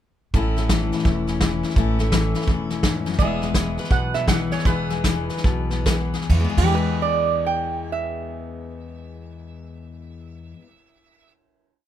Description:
honky-tonk and classic country; 135-169 BPM; 4/4; swing 63% on 8ths; E major; A4 = 440 Hz
picked steel-string acoustic guitar; accompaniment; 0.3-10.7 s; E2 to B4; -25 LUFS; left 5 dB
upright bass; bass; 0.3-10.5 s; E1 to E2; -25 LUFS; right 1 dB
vintage brush drum kit; drums; 0.3-6.7 s; hi-hat, kick drum, ride cymbal, snare drum; -22 LUFS; right 1 dB
lap resonator guitar; second line; 3.2-11.3 s; G4 to G5; -25 LUFS; right 8 dB
light reverb; -19 LUFS; side -11 dB against mid
0.3-6.3 A section; 6.3-9.9 final chord
slowing down 3.2-6.3
0.3 A; 3.2 E

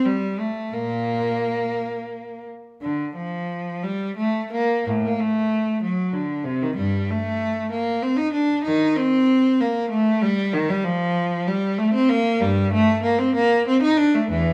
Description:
classical, baroque-style suite movement for unaccompanied cello; 56-65 BPM (dotted quarters); 6/8; rubato; Bb major from 10.5 s; A4 = 440 Hz
rich cello; solo; 0.0-14.5 s; E2 to Eb4; -22 LUFS; equal
wet stone room reverb, RT60 1.3 s; -22 LUFS; mono
0.0-2.8 A section; 2.8-14.5 A section

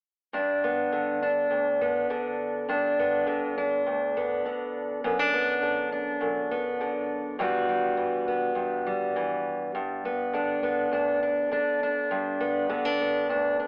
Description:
folk; 102 BPM; 4/4; straight; G major; A4 = 435 Hz
fingerpicked steel-string acoustic guitar; accompaniment; 0.3-13.7 s; D2 to F#4; -27 LUFS; equal
wet spring reverb, RT60 1.9 s, studio reverb; worn, warbling old tape, cassette tape, warbly pitch drift, telephone sound; -27 LUFS; mono
0.3-9.7 A section; 9.7-13.7 B section
0.3 G; 5.0 Bm/F#; 7.4 Emadd9/G; 9.7 G

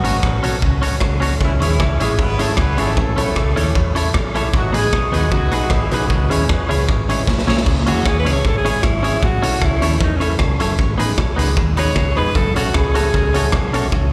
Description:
ska; 154 BPM; 4/4; straight; C# minor; A4 = 440 Hz
clear horn section; melody; 0.0-7.3 s; C#3 to B4; -27 LUFS; equal; analog delay, slapback echo
semi-hollow electric guitar; accompaniment; 0.0-13.9 s; B3 to C#5; -26 LUFS; equal; spring reverb, analog delay
hollow-body short-scale fingered electric bass; bass; 0.0-14.1 s; E1 to E2; -22 LUFS; equal
raw garage drum kit; drums; 0.0-14.0 s; crash cymbal, hi-hat, kick drum, rim click, snare drum; -21 LUFS; equal
bright upright piano; stabs; 1.6-13.9 s; G#3 to A4; -29 LUFS; equal; analog delay
edgy alto saxophone; melody; 7.9-13.7 s; C#4 to C#5; -24 LUFS; equal
light reverb, small room ambience; live gig heard through the venue's PA, club reverb; -17 LUFS; mono
0.0-7.7 A section; 7.7-14.1 B section
drum fill 7.3-7.7; alto saxophone solo 7.7-14.1
0.0 F#m; 1.4 C#m; 3.0 A; 4.5 G#m; 6.1 C#m; 9.2 A; 10.8 G#m; 12.4 F#m

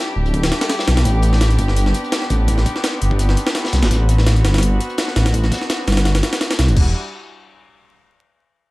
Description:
drum and bass, jungle; 168 BPM; 4/4; swing 54% on 16ths; E minor; A4 = 438 Hz
dark studio string section; sustained chords; 0.0-6.9 s; G3 to G4; -25 LUFS; left 1 dB; vintage 12-bit sampler grit, low-pass filter
dark detuned saw bass; bass; 0.2-6.9 s; D1 to C2; -15 LUFS; equal
breakbeat sampler-style drum kit; drums; 0.3-6.8 s; crash cymbal, hi-hat, kick drum, snare drum; -20 LUFS; equal; high-pass filter on hats, studio ambience, high-pass filter on kick, high-pass filter on snare, high-pass filter on cymbals
crunchy breakbeat drum kit; drums; 0.3-6.8 s; hi-hat, snare drum; -30 LUFS; left 3 dB; high-pass filter on hats, studio ambience, high-pass filter on snare, high-pass filter on room
studio ambience; vinyl crackle; -14 LUFS; side -20 dB against mid
0.0-6.8 A section; 6.8-8.2 B section
0.0 Em7; 1.1 Am11; 6.8 Em9

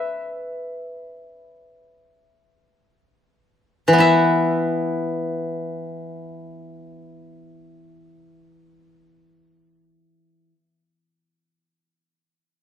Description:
chinese traditional, Chinese solo plucked strings; free time; A4 = 440 Hz
steel-string zither; solo; 0.0-10.5 s; E3 to E5; -19 LUFS; left 1 dB; slapback echo
little or no reverb; recorded outdoors, with no room sound; -18 LUFS; side -9 dB against mid
0.0-4.0 A section; 4.0-10.4 B section
slowing down 0.0-4.0

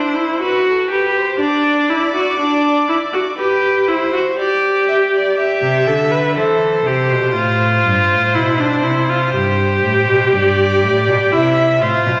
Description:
classical, baroque-style fugue for string quartet; 60 BPM; 4/4; straight; C major; A4 = 439 Hz
rich violin; second line; 0.0-12.2 s; A4 to E5; -22 LUFS; equal
rich viola; accompaniment; 0.0-12.2 s; D4 to B4; -17 LUFS; equal
clear cello; bass; 5.6-12.1 s; G2 to E3; -21 LUFS; equal
wet scoring stage reverb, RT60 1.5 s; -15 LUFS; mono
0.0-12.2 A section
0.0 C; 1.4 D; 3.4 G; 5.4 C; 7.4 F; 9.3 G; 11.3 C

